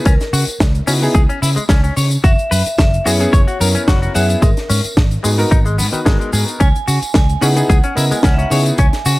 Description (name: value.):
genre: nu-disco, nu disco.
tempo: 110 BPM.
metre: 4/4.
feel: straight.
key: C# dorian.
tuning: A4 = 441 Hz.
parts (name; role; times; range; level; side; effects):
vibraphone with hard mallets; melody; 0.0-9.2 s; A#4 to G#5; -23 LUFS; right 1 dB; analog delay.
warm electric grand piano; accompaniment; 0.0-8.8 s; B3 to D#5; -20 LUFS; equal; sidechain pumping, slapback echo.
direct-recorded clean electric guitar; riff; 0.1-9.2 s; D#3 to F#5; -22 LUFS; left 3 dB; lush chorus, slapback echo.
fingered electric bass; bass; 0.1-9.2 s; F#1 to C#3; -16 LUFS; equal; tube saturation.
electronic kick drum; drums; 0.1-8.9 s; none; -13 LUFS; equal; none.
tight funk drum kit; drums; 0.1-9.2 s; hi-hat, snare drum, tambourine; -20 LUFS; left 1 dB; none.
cabasa; percussion; 0.1-9.2 s; none; -30 LUFS; equal; none.
room: studio reverb.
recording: none.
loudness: -12 LUFS.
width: side -19 dB against mid.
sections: 0.0-9.2 A section.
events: none.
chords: 0.0 C#m7; 2.2 F#9sus4; 4.4 G#m9; 6.6 C#m7.